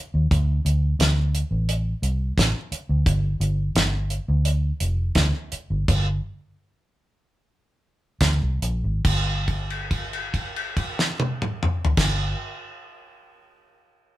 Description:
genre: straight-eighth soul blues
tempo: 70-87 BPM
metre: 4/4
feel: straight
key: G minor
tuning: A4 = 438 Hz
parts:
  - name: vintage muted fingered electric bass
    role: bass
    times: 0.1-12.3 s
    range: F1 to Eb2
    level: -22 LUFS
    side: equal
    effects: none
  - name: damped 70s drum kit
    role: drums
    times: 0.3-12.2 s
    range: crash cymbal, hi-hat, kick drum, snare drum, toms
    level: -23 LUFS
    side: equal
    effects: none
room: moderate studio reverb, RT60 0.8 s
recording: band playing live in one room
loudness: -21 LUFS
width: side -16 dB against mid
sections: 0.0-9.0 A section; 9.0-12.5 B section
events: slowing down 3.1-9.0; stop 5.9-8.2; held note 9.0-12.0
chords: none

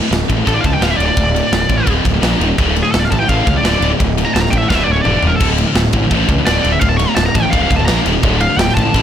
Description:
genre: heavy metal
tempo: 170 BPM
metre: 4/4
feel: straight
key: D harmonic minor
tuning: A4 = 440 Hz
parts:
  - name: scooped high-gain guitar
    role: riff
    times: 0.0-9.0 s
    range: D2 to Bb3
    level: -17 LUFS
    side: left 1 dB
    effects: distortion
  - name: fuzz picked electric bass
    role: bass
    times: 0.1-9.0 s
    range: D1 to C#2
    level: -17 LUFS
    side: equal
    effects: overdrive
  - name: tight metal drum kit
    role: drums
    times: 0.1-9.0 s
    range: crash cymbal, kick drum, ride cymbal, snare drum, toms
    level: -17 LUFS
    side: equal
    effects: none
  - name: high-gain lead guitar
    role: melody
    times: 0.5-9.0 s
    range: G#4 to C#6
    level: -19 LUFS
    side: equal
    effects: distortion, ping-pong delay
room: light reverb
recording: blown-out, overdriven recording, overdrive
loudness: -12 LUFS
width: side -9 dB against mid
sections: 0.0-9.0 A section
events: lead electric guitar solo 0.0-9.0; drum fill 4.7-5.4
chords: 0.0 D5; 2.2 Bb5; 2.4 Eb5; 2.6 D5; 5.2 Eb5; 5.4 D5; 7.9 Bb5; 8.0 Eb5; 8.2 D5

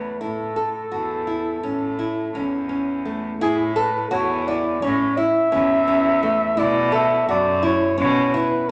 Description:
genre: contemporary instrumental, chamber music in an uneven meter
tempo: 170 BPM (eighths)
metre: 9/8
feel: straight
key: A major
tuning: A4 = 440 Hz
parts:
  - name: breathy flugelhorn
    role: melody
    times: 0.0-8.7 s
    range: G#4 to E5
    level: -24 LUFS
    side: equal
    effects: none
  - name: nylon-string guitar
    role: arpeggios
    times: 0.0-8.6 s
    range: A3 to A4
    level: -25 LUFS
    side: equal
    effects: none
  - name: clear cello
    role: bass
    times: 0.0-8.3 s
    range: E2 to B2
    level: -29 LUFS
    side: equal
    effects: none
room: wet recital hall reverb, RT60 1.6 s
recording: none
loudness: -21 LUFS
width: mono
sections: 0.0-3.4 A section; 3.4-8.7 B section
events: none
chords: 0.0 A; 6.6 B9sus4

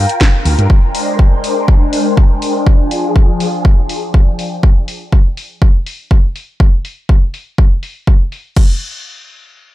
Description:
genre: filtered disco house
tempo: 122 BPM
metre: 4/4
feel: swing 54% on 16ths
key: F dorian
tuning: A4 = 442 Hz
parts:
  - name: phased string machine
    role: sustained chords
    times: 0.0-4.6 s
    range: F3 to G5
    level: -17 LUFS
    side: left 2 dB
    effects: ensemble chorus, phaser, sidechain pumping, low-pass filter
  - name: slap bass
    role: bass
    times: 0.0-0.7 s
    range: D2 to G2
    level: -11 LUFS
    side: equal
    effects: sidechain pumping, low-pass filter
  - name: house drum kit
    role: drums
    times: 0.1-8.7 s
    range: crash cymbal, hi-hat, snare drum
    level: -22 LUFS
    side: left 1 dB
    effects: overdrive, sidechain pumping on hats, low-pass filter on hats, sidechain pumping on cymbals, low-pass filter on cymbals, low-pass filter on snare
  - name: electronic kick drum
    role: drums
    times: 0.2-8.7 s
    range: none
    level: -9 LUFS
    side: equal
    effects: none
room: little or no reverb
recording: dark, warm production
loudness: -10 LUFS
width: side -16 dB against mid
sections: 0.0-8.6 A section; 8.6-9.7 B section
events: filter sweep on drum 0.0-8.6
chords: 0.0 Gm7; 0.7 Abmaj9#11; 2.7 Fm69; 4.6 N.C.

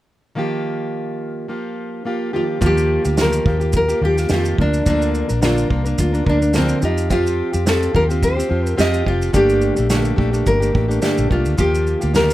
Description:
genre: acoustic pop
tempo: 107 BPM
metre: 4/4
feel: swing 55% on 16ths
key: unclear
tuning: A4 = 443 Hz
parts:
  - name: fingerpicked plugged-in steel-string acoustic guitar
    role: accompaniment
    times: 0.4-12.3 s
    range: G2 to Bb4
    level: -21 LUFS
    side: equal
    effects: none
  - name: nylon-string guitar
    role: melody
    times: 2.4-12.3 s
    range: C4 to Eb5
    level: -20 LUFS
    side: equal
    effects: none
  - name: vintage muted fingered electric bass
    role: bass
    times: 2.6-12.3 s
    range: F1 to F2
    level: -20 LUFS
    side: equal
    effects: none
  - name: unplugged drum kit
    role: drums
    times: 2.6-12.3 s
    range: kick drum, shaker, snare drum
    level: -22 LUFS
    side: right 1 dB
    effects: none
room: little or no reverb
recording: none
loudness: -15 LUFS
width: side -15 dB against mid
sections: 0.4-2.6 A section; 2.6-12.3 B section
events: none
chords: 0.4 Ebadd9; 4.6 Bb; 6.8 Fsus2; 9.3 Gmadd9; 11.6 Ebadd9

